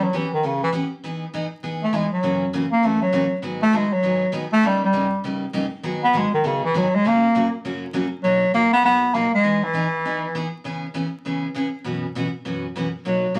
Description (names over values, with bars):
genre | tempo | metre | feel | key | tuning
country | 200 BPM | 4/4 | swing 62% on 8ths | unclear | A4 = 436 Hz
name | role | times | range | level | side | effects
breathy bass clarinet | melody | 0.0-10.5, 13.1-13.4 s | C#3 to B3 | -21 LUFS | equal | none
picked steel-string acoustic guitar | accompaniment | 0.0-13.4 s | F#2 to G#4 | -28 LUFS | equal | none
room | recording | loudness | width
wet studio reverb, RT60 0.6 s | vinyl crackle | -22 LUFS | mono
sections
0.0-8.2 A section; 8.2-13.4 B section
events
bass clarinet solo 0.0-8.2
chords
0.0 Em6; 1.0 Emaj7; 2.2 F#7; 3.4 G#m7; 4.6 D#7/G; 5.8 G#m7; 7.0 F#; 8.2 Bmaj7; 9.4 Emaj7; 10.7 C#m7; 11.9 F#7sus4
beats
0.14 0.44 0.74 | 1.04 1.34 1.64 1.94 | 2.24 2.54 2.84 3.14 | 3.44 3.74 4.04 4.34 | 4.64 4.94 5.24 5.54 | 5.84 6.14 6.44 6.74 | 7.04 7.34 7.64 7.94 | 8.24 8.54 8.85 9.15 | 9.45 9.75 10.05 10.35 | 10.65 10.95 11.25 11.55 | 11.85 12.15 12.45 12.75 | 13.05 13.36